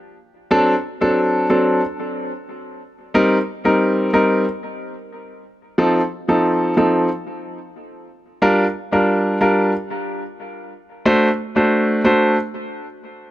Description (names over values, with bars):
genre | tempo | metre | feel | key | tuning
dancehall | 91 BPM | 4/4 | straight | G minor | A4 = 440 Hz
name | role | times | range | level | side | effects
warm grand piano | solo | 0.5-12.4 s | F3 to C5 | -16 LUFS | equal | tape echo
room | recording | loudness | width
light reverb, small room ambience | none | -15 LUFS | side -14 dB against mid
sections
0.0-8.4 A section; 8.4-13.3 B section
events
none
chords
0.0 N.C.; 0.5 D7; 3.1 Cm7; 5.8 F7; 8.4 Gm7; 11.1 D7